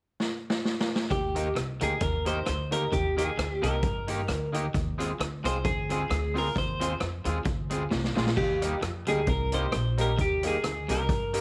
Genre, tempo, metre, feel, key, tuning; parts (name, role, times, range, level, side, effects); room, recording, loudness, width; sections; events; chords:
ska; 132 BPM; 4/4; swing 55% on 8ths; Eb major; A4 = 440 Hz
street-band drum kit; drums; 0.2-11.4 s; hi-hat, kick drum, rim click, snare drum, splash cymbal; -34 LUFS; equal
clean electric guitar; melody; 1.1-11.4 s; G4 to C5; -32 LUFS; equal; subtle chorus
twangy electric guitar; riff; 1.1-11.2 s; Bb2 to G3; -43 LUFS; equal
upright bass; bass; 1.1-11.4 s; Bb1 to G2; -34 LUFS; equal
electric guitar at the edge of break-up; accompaniment; 1.4-11.4 s; Eb3 to Ab4; -38 LUFS; equal; tube saturation
clear upright piano; stabs; 1.4-11.4 s; Bb3 to Ab4; -40 LUFS; equal; slapback echo
light reverb, studio ambience; -28 LUFS; mono
0.0-1.1 A section; 1.1-11.4 B section
drum fill 0.2-1.1, 7.9-8.4
0.0 N.C.; 1.1 Eb; 4.7 Fm; 8.4 Eb